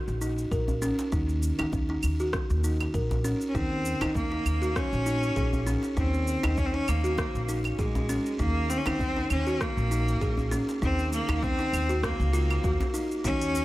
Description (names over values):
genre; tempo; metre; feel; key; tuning
organic downtempo; 99 BPM; 4/4; swing 55% on 16ths; unclear; A4 = 439 Hz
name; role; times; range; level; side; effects
buzzing kalimba; arpeggios; 0.0-13.6 s; Db4 to Bb4; -31 LUFS; equal; low-pass filter, tape echo
upright bass; bass; 0.1-13.6 s; Bb1 to Eb2; -29 LUFS; equal; none
afro-pop drum kit; drums; 0.1-13.6 s; cabasa, claves, hi-hat, rim click; -37 LUFS; right 2 dB; small room ambience
electronic kick drum; drums; 0.5-13.4 s; none; -32 LUFS; equal; small room ambience
djembe; percussion; 0.7-13.6 s; none; -35 LUFS; equal; none
bright cello; melody; 3.5-13.6 s; Ab3 to Db4; -30 LUFS; equal; tape echo
room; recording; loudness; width
light reverb, small room ambience; none; -25 LUFS; side -17 dB against mid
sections
0.0-13.2 A section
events
none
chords
0.0 Ebm; 3.5 Gb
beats
0.52 | 1.12 1.73 2.33 2.94 | 3.55 4.15 4.76 5.37 | 5.97 6.58 7.18 7.79 | 8.40 9.00 9.61 10.21 | 10.82 11.43 12.03 12.64 | 13.24